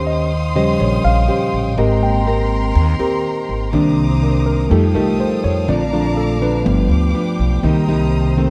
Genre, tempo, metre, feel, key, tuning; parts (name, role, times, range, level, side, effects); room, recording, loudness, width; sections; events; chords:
bossa nova; 123 BPM; 4/4; straight; A4 = 440 Hz
nylon-string guitar; accompaniment; 0.0-8.5 s; G2 to C5; -22 LUFS; equal
tine electric piano; accompaniment; 0.0-8.5 s; Db3 to G5; -21 LUFS; equal
warm chamber violin section; sustained chords; 0.0-8.5 s; A4 to Eb6; -29 LUFS; equal
upright bass; bass; 0.0-8.5 s; G1 to F2; -20 LUFS; equal
little or no reverb; close, detailed microphones; -16 LUFS; mono
0.0-8.5 A section
tine electric piano solo 0.0-8.5
0.0 Eb13; 1.8 Abmaj9; 3.7 Cm9; 4.7 F9; 5.7 Bbmaj7; 6.7 G7; 7.6 Cm7